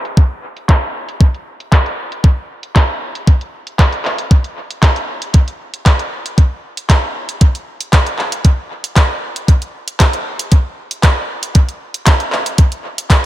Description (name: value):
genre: nu-disco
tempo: 116 BPM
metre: 4/4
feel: straight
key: none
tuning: none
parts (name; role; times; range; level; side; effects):
- house drum kit; drums; 0.1-13.2 s; handclaps, hi-hat; -19 LUFS; equal; overdrive, low-pass filter on hats, low-pass filter on snare, low-pass filter on room, analog delay
- electronic kick drum; drums; 0.2-13.2 s; none; -9 LUFS; equal; overdrive
room: light reverb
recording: echo-heavy mix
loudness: -12 LUFS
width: side -14 dB against mid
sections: 0.0-13.3 A section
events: filter sweep on drum 0.0-13.3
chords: none